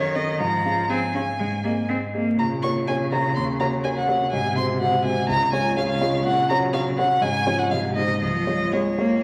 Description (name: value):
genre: quick classical-period movement for piano trio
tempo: 123 BPM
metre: 4/4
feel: straight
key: Db major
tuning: A4 = 435 Hz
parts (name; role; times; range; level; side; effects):
- rich violin; melody; 0.0-9.2 s; Db5 to Db6; -26 LUFS; equal; none
- clear cello; second line; 0.0-9.2 s; C3 to Db4; -28 LUFS; equal; none
- dark concert grand piano; accompaniment; 0.0-9.2 s; Db2 to F5; -27 LUFS; equal; none
room: wet recital hall reverb, RT60 1.4 s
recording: vinyl crackle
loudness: -22 LUFS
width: mono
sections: 0.0-9.2 A section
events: none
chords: 0.4 Db/Ab; 1.4 Ab; 2.4 Bbm; 3.4 Ebm7; 4.3 Ab7; 5.3 Db; 6.3 Gb/Bb; 7.2 Db/Ab; 7.7 Ab; 8.2 Db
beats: | 0.40 0.90 1.40 1.89 | 2.39 2.87 3.36 3.84 | 4.33 4.81 5.29 5.77 | 6.25 6.73 7.22 7.71 | 8.21 8.72